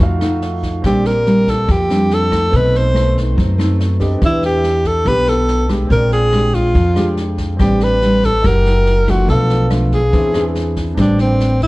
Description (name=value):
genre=bossa nova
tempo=142 BPM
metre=4/4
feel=straight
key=A minor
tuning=A4 = 441 Hz
part: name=nylon-string guitar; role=accompaniment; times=0.0-11.7 s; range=F2 to G#4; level=-18 LUFS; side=equal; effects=none
part: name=warm grand piano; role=accompaniment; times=0.0-11.7 s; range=Bb3 to G5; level=-27 LUFS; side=right 3 dB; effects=none
part: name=upright bass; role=bass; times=0.0-11.7 s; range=F#1 to F#2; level=-17 LUFS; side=equal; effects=none
part: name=jazz brush drum kit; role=drums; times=0.0-11.7 s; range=kick drum, rim click, snare drum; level=-23 LUFS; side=equal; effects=none
part: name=breathy alto saxophone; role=melody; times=0.9-11.7 s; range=C4 to C5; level=-17 LUFS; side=equal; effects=tape echo
room=light reverb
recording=dark, warm production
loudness=-12 LUFS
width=side -20 dB against mid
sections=0.0-11.0 A section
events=none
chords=0.0 F7b9; 0.8 Bb69; 2.5 B7b9; 4.2 Em7; 5.9 Bb13; 7.6 Am11; 8.4 F#7b9; 9.3 Bm7b5; 10.1 Eaug7; 11.0 Am11